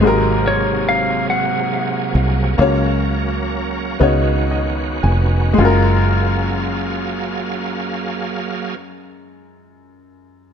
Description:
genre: gospel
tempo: 36-49 BPM (dotted quarters)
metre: 6/8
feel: straight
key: F# major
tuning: A4 = 440 Hz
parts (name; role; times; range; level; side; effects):
- clear upright piano; accompaniment; 0.0-10.5 s; F#2 to G#5; -19 LUFS; left 3 dB; none
- bright tonewheel organ; sustained chords; 0.0-8.8 s; B#2 to E#5; -23 LUFS; right 4 dB; slow rotary speaker, chorus vibrato
- fingered electric bass; bass; 0.0-8.8 s; E#1 to C#2; -18 LUFS; equal; none
- clean lap steel guitar; melody; 0.5-4.5 s; C#5 to F#5; -22 LUFS; equal; analog delay
room: light reverb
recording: echo-heavy mix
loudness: -15 LUFS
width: side -7 dB against mid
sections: 0.0-5.6 A section; 5.6-8.9 B section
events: slowing down 0.1-5.6; upright piano fill 4.0-5.6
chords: 0.1 G#9; 2.6 F#/C#; 4.0 C#9sus4; 5.6 F#maj9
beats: | 0.05 1.29 | 2.60 4.00 | 5.58 7.26

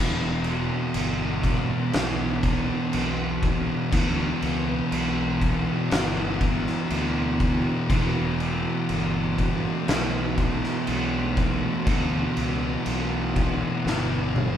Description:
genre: stoner and doom metal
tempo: 60 BPM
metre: 4/4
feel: straight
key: E minor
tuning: A4 = 440 Hz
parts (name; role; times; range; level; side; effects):
- ensemble organ-string; sustained chords; 0.0-14.6 s; E3 to F#4; -37 LUFS; left 1 dB; none
- thick fuzz guitar; riff; 0.0-14.6 s; E2 to E3; -28 LUFS; left 5 dB; distortion
- thick fuzz guitar; riff; 0.0-14.6 s; E2 to E3; -28 LUFS; right 5 dB; distortion
- fuzz fingered electric bass; bass; 0.0-14.6 s; E1 to D2; -31 LUFS; equal; overdrive
- oversized low-tuned drum kit; drums; 0.4-14.6 s; crash cymbal, kick drum, snare drum, toms; -27 LUFS; equal; none
room: moderate large studio reverb, RT60 1.1 s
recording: band playing live in one room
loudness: -22 LUFS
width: side -9 dB against mid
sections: 0.0-14.6 A section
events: drum fill 13.9-14.6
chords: 0.0 Em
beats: 0.94 1.94 2.93 | 3.93 4.92 5.92 6.91 | 7.90 8.90 9.89 10.88 | 11.88 12.87 13.87

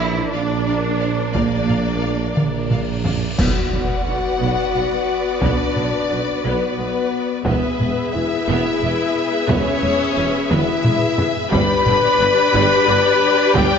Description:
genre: cinematic, epic orchestral film score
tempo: 59 BPM (dotted quarters)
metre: 6/8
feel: straight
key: B minor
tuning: A4 = 441 Hz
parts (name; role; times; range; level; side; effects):
- warm symphonic violin section; melody; 0.0-13.8 s; A#4 to B5; -25 LUFS; left 4 dB; none
- warm symphonic violin section; second line; 0.0-13.8 s; B4 to E#5; -28 LUFS; left 5 dB; none
- dark symphonic viola section; accompaniment; 0.0-13.8 s; D3 to G#4; -26 LUFS; right 1 dB; none
- warm French horn section; sustained chords; 0.0-13.8 s; D3 to B4; -22 LUFS; left 6 dB; none
- warm symphonic string section; sustained chords; 0.0-13.8 s; B3 to E5; -26 LUFS; equal; none
- mellow tuba; bass; 0.0-13.7 s; E1 to B1; -27 LUFS; right 5 dB; none
- rich symphonic double bass section; bass; 0.0-13.6 s; E1 to B1; -27 LUFS; right 5 dB; none
- warm symphonic cello section; bass; 0.0-13.6 s; E2 to E4; -27 LUFS; right 3 dB; none
- taiko ensemble; drums; 1.3-13.8 s; none; -22 LUFS; equal; none
- cymbal swell and impact; sound effects; 2.6-5.4 s; none; -32 LUFS; equal; none
- mellow hollow concert flute; second line; 3.4-13.8 s; B4 to B5; -27 LUFS; left 1 dB; none
- clash cymbals and concert bass drum; percussion; 3.4-4.7 s; none; -28 LUFS; equal; none
room: moderate concert hall reverb, RT60 2.1 s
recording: nothing above 7.6 kHz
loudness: -16 LUFS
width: side -7 dB against mid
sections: 0.0-3.4 A section; 3.4-13.8 A section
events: drum fill 2.4-3.4, 10.5-11.5; cymbal swell 2.6-3.4; band accent 3.4-4.1; impact 3.4-5.4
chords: 0.0 A#; 3.4 Bm; 7.5 E; 11.5 G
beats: 0.33 | 1.35 2.37 | 3.38 4.41 | 5.42 6.44 | 7.46 8.47 | 9.49 10.51 | 11.52 12.54 | 13.55

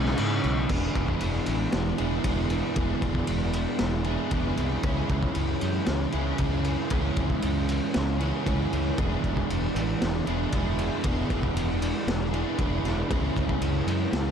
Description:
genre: rock, shoegaze and dream pop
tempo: 116 BPM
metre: 4/4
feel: straight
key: E mixolydian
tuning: A4 = 440 Hz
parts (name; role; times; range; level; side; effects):
- biting overdriven guitar; riff; 0.0-14.3 s; C#3 to G#4; -31 LUFS; left 15 dB; analog chorus
- overdriven semi-hollow guitar; riff; 0.0-14.3 s; E2 to E4; -30 LUFS; right 13 dB; reverse reverb
- fuzz fingered electric bass; bass; 0.0-14.3 s; E1 to G#2; -30 LUFS; left 1 dB; overdrive
- raw garage drum kit; drums; 0.0-14.3 s; crash cymbal, kick drum, ride cymbal, snare drum; -30 LUFS; left 1 dB; none
room: studio reverb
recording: dark, warm production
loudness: -24 LUFS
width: side -7 dB against mid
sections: 0.7-14.3 A section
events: none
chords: 0.0 C#m7; 0.7 E7; 4.8 C#m; 9.0 E7; 13.1 C#m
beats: 0.18 | 0.70 1.22 1.73 2.25 | 2.77 3.29 3.81 4.32 | 4.84 5.36 5.88 6.40 | 6.91 7.43 7.95 8.47 | 8.98 9.50 10.02 10.53 | 11.05 11.57 12.08 12.60 | 13.11 13.63 14.14

